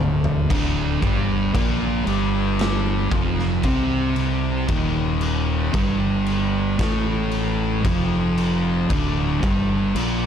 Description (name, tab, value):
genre	stoner and doom metal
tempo	57 BPM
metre	4/4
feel	straight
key	D minor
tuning	A4 = 440 Hz
part	thick fuzz guitar	riff	0.0-10.3 s	D2 to C4	-25 LUFS	left 11 dB	distortion
part	thick fuzz guitar	riff	0.0-10.3 s	D2 to C4	-24 LUFS	right 10 dB	distortion
part	fuzz fingered electric bass	bass	0.0-10.3 s	D1 to C2	-25 LUFS	equal	overdrive
part	raw garage drum kit	drums	0.2-10.2 s	crash cymbal, kick drum, snare drum, toms	-25 LUFS	left 1 dB	none
room	small room ambience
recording	dark, warm production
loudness	-19 LUFS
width	side -8 dB against mid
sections	0.0-10.3 A section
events	drum fill 0.0-0.5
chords	0.0 Dm